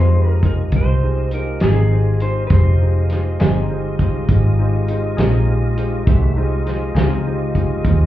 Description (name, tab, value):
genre	slow blues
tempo	68 BPM (dotted quarters)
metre	12/8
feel	straight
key	F minor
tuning	A4 = 439 Hz
part	clean lap steel guitar	melody	0.0-4.3 s	Ab4 to C5	-26 LUFS	equal	plate reverb
part	clean electric guitar	accompaniment	0.0-7.1 s	F3 to Ab4	-24 LUFS	left 1 dB	harmonic tremolo
part	clear upright piano	accompaniment	0.0-8.1 s	Eb4 to C5	-26 LUFS	right 1 dB	none
part	tonewheel organ	sustained chords	0.0-8.1 s	Ab3 to E5	-26 LUFS	left 2 dB	slow rotary speaker, overdrive, chorus vibrato
part	vintage muted fingered electric bass	bass	0.0-8.1 s	F1 to F2	-16 LUFS	equal	none
part	warm soul drum kit	drums	0.4-8.0 s	hi-hat, kick drum, snare drum	-19 LUFS	equal	none
room	little or no reverb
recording	heard muffled through a wall, club reverb, EQ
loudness	-15 LUFS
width	side -13 dB against mid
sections	0.0-8.1 A section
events	none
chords	0.0 Fm7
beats	0.73 1.62 | 2.51 3.40 4.29 5.18 | 6.07 6.96 7.85